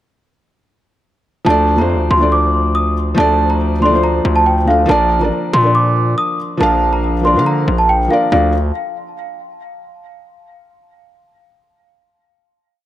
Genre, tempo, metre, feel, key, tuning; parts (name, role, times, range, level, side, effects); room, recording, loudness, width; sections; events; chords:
hip hop, drill; 140 BPM; 4/4; half-time; D minor; A4 = 439 Hz
felt-muted upright piano; accompaniment; 1.4-8.5 s; F3 to F5; -17 LUFS; equal
celesta; melody; 1.5-8.5 s; F5 to Eb6; -16 LUFS; equal; ping-pong delay
distorted 808-style bass; bass; 1.5-8.7 s; A1 to D3; -16 LUFS; equal; distortion
light reverb, small room ambience; -12 LUFS; side -13 dB against mid
1.5-8.3 hook; 8.3-10.0 final chord
1.5 Dm; 4.9 Bb; 8.3 N.C.